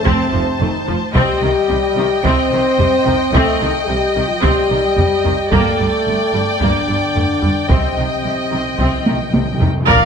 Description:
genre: cinematic, epic orchestral film score.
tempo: 110 BPM.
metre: 4/4.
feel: straight.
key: C dorian.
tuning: A4 = 440 Hz.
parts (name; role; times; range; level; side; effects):
rich symphonic violin section; melody; 0.0-10.1 s; F5 to A5; -25 LUFS; left 3 dB; none.
warm symphonic violin section; second line; 0.0-9.7 s; C5 to Eb5; -22 LUFS; left 2 dB; none.
dark French horn section; sustained chords; 0.0-10.1 s; C4 to C5; -20 LUFS; left 4 dB; none.
mellow trombone section; sustained chords; 0.0-10.1 s; C3 to C4; -24 LUFS; right 4 dB; none.
rich symphonic cello section; bass; 0.0-10.0 s; F2 to C3; -24 LUFS; right 2 dB; none.
warm symphonic viola section; accompaniment; 0.1-10.1 s; Eb3 to D5; -21 LUFS; equal; none.
rich chamber double bass section; bass; 0.1-10.0 s; F1 to C2; -24 LUFS; right 4 dB; none.
taiko ensemble; drums; 0.1-10.1 s; none; -19 LUFS; right 1 dB; none.
timpani; percussion; 7.7-9.9 s; C3; -23 LUFS; right 1 dB; none.
dark trumpet section; stabs; 9.9-10.1 s; F5; -19 LUFS; equal; none.
impact; sound effects; 10.0-10.1 s; none; -24 LUFS; equal; none.
room: moderate recital hall reverb, RT60 1.4 s.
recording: none.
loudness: -13 LUFS.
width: side -6 dB against mid.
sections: 0.0-9.9 A section.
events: timpani fill 7.7-9.9; drum fill 9.1-9.9; impact 9.9.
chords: 0.0 F; 1.2 Cm; 5.5 Gmadd9; 7.7 Cm.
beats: 0.06 0.61 | 1.15 1.70 2.25 2.79 | 3.34 3.88 4.43 4.97 | 5.52 6.06 6.61 7.15 | 7.70 8.24 8.79 9.34 | 9.88.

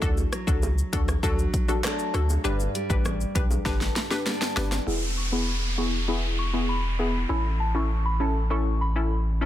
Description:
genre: dancehall.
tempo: 99 BPM.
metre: 4/4.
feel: straight.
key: unclear.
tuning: A4 = 442 Hz.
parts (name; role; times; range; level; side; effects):
analog pluck; accompaniment; 0.0-9.5 s; B3 to B4; -30 LUFS; left 2 dB; chorus, sidechain pumping, low-pass filter.
nylon-string guitar; arpeggios; 0.0-5.4 s; G2 to D4; -32 LUFS; equal; none.
punchy sub bass; bass; 0.0-9.5 s; E1 to D2; -26 LUFS; equal; none.
deep house drum kit; drums; 0.0-4.9 s; handclaps, hi-hat, kick drum, rim click, shaker, snare drum; -27 LUFS; equal; soft clipping on snare.
bongos; percussion; 0.2-4.9 s; none; -41 LUFS; right 2 dB; none.
soft synth bell; melody; 4.9-8.9 s; A5 to E6; -33 LUFS; equal; chorus, low-pass filter, tape echo.
downlifter; sound effects; 4.9-9.5 s; none; -33 LUFS; equal; none.
room: little or no reverb.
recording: dense, heavily limited modern master.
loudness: -23 LUFS.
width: side -12 dB against mid.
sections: 0.0-4.9 A section; 4.9-9.5 B section.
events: drum fill 3.7-4.9; filter sweep 4.9-9.5.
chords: 0.0 D; 2.4 G; 4.9 E; 7.3 A.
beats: | 0.02 0.63 1.24 1.84 | 2.45 3.05 3.66 4.26 | 4.87 5.48 6.08 6.69 | 7.29 7.90 8.51 9.11.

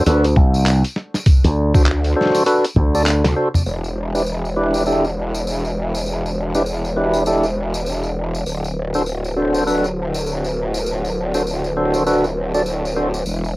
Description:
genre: glitch hop.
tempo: 100 BPM.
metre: 4/4.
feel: swing 61% on 16ths.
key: unclear.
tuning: A4 = 439 Hz.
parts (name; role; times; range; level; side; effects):
tonewheel organ; stabs; 0.0-13.1 s; D4 to D5; -19 LUFS; equal; slow rotary speaker, sidechain pumping, analog delay.
slap bass with an envelope filter; bass; 0.0-3.2 s; C2 to D2; -15 LUFS; equal; none.
boom bap sampler-style drum kit; drums; 0.1-3.8 s; crash cymbal, handclaps, hi-hat, snare drum, toms; -21 LUFS; equal; low-pass filter on snare, small room ambience, cassette tape, low-pass filter on hats, low-pass filter on toms, low-pass filter on cymbals.
tambourine; percussion; 0.1-13.5 s; none; -31 LUFS; left 1 dB; none.
electronic kick drum; drums; 0.4-2.9 s; none; -13 LUFS; equal; small room ambience, cassette tape.
growl bass; bass; 1.7-13.6 s; D1 to D2; -21 LUFS; equal; chorus.
room: moderate booth ambience, RT60 0.2 s.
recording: home recording on cassette.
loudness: -16 LUFS.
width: side -20 dB against mid.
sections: 0.0-3.7 A section; 3.7-13.6 B section.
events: kick drops out 3.1-3.7; band accent 3.1; drum fill 3.2-3.7.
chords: 0.0 D7; 3.7 Em7; 8.5 D7.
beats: 0.06 0.66 | 1.26 1.86 2.46 3.06 | 3.66 4.26 4.86 5.46 | 6.06 6.66 7.26 7.86 | 8.46 9.06 9.66 10.26 | 10.86 11.46 12.06 12.66 | 13.26.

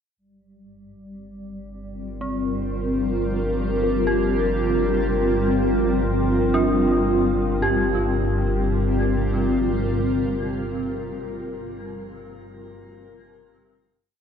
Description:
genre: dark ambient drone.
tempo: free time.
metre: none.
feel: none.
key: G minor.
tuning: A4 = 440 Hz.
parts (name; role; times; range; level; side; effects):
granular cloud pad; sustained chords; 1.1-11.1 s; G3 to Bb4; -23 LUFS; equal; built-in reverb, shimmer reverb.
deep rumbling drone; drone; 1.8-10.7 s; G1 to G2; -27 LUFS; equal; built-in reverb.
dark detuned synth bell; arpeggios; 2.2-13.9 s; C4 to G4; -29 LUFS; equal; chorus, diffuse ambient delay, shimmer reverb.
quartz singing bowl; texture; 3.8-7.6 s; Bb4; -33 LUFS; left 5 dB; none.
room: wet cathedral reverb, RT60 5.5 s.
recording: in a vast, echoing space.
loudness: -20 LUFS.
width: side -7 dB against mid.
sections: 0.2-7.6 A section; 7.6-11.3 final chord.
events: fade-in on synth drone 0.2-7.6; fade-in on synth bell 0.2-7.6.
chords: 0.2 Gm; 3.9 Bb69/G; 7.6 Gm.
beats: free time.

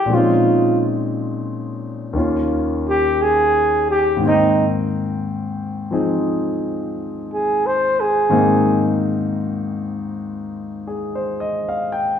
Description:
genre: jazz.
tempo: 58 BPM.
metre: 4/4.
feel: swing 69% on 8ths.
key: Ab major.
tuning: A4 = 440 Hz.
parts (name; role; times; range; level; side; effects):
breathy flugelhorn; melody; 0.0-9.0 s; Eb4 to C5; -17 LUFS; right 1 dB; none.
warm concert grand piano; accompaniment; 0.0-12.2 s; Eb2 to G5; -20 LUFS; left 2 dB; none.
room: wet large studio reverb, RT60 1.1 s.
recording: heard from further back in the room.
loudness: -17 LUFS.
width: side -8 dB against mid.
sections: 0.0-12.2 A section.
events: flugelhorn solo 0.0-12.2.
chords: 0.1 Bbm11; 2.1 Eb5; 4.2 Abmaj7.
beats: | 0.09 1.12 2.14 3.17 | 4.20 5.23 6.25 7.28 | 8.31 9.34 10.37 11.40.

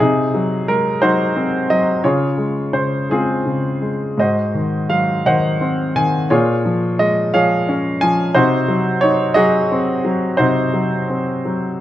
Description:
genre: classical, lyrical solo piano.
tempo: 58 BPM (dotted quarters).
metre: 6/8.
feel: uneven beats, rubato.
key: unclear.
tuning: A4 = 441 Hz.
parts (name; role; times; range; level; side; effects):
clear baby grand piano; solo; 0.0-11.8 s; Ab2 to Ab5; -15 LUFS; equal; none.
room: light reverb.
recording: close, detailed microphones.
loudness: -15 LUFS.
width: side -13 dB against mid.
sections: 0.0-11.8 A section.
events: none.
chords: 0.0 Ab7/C; 2.0 Dbmaj7; 4.2 Ab7; 6.3 Bbm7; 8.4 Ab7/C.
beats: 1.01 | 2.04 3.10 | 4.18 5.25 | 6.30 7.34 | 8.35 9.36 | 10.39 11.45.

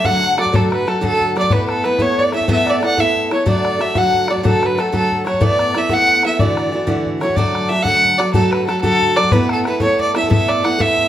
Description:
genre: celtic folk, Celtic jig.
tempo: 123 BPM (dotted quarters).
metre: 6/8.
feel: straight.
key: D major.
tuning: A4 = 440 Hz.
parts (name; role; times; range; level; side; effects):
warm fiddle; melody; 0.0-11.1 s; A4 to F#5; -16 LUFS; right 1 dB; none.
wooden flute; second line; 0.0-7.1 s; A4 to F#5; -23 LUFS; left 4 dB; none.
picked steel-string acoustic guitar; accompaniment; 0.0-11.1 s; D3 to A4; -19 LUFS; right 1 dB; none.
bodhran; percussion; 0.0-11.0 s; none; -21 LUFS; left 2 dB; none.
room: wet large studio reverb, RT60 0.9 s.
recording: band playing live in one room.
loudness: -13 LUFS.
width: side -11 dB against mid.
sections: 0.0-7.4 A section; 7.4-11.1 A section.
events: none.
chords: 0.0 D; 1.5 Asus2; 3.5 D; 5.4 Asus2; 6.4 Dadd9; 7.4 D; 9.3 Asus2.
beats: 0.05 | 0.54 1.02 | 1.51 2.00 | 2.48 2.97 | 3.46 3.95 | 4.44 4.93 | 5.42 5.90 | 6.39 6.88 | 7.37 7.86 | 8.35 8.84 | 9.32 9.81 | 10.30 10.79.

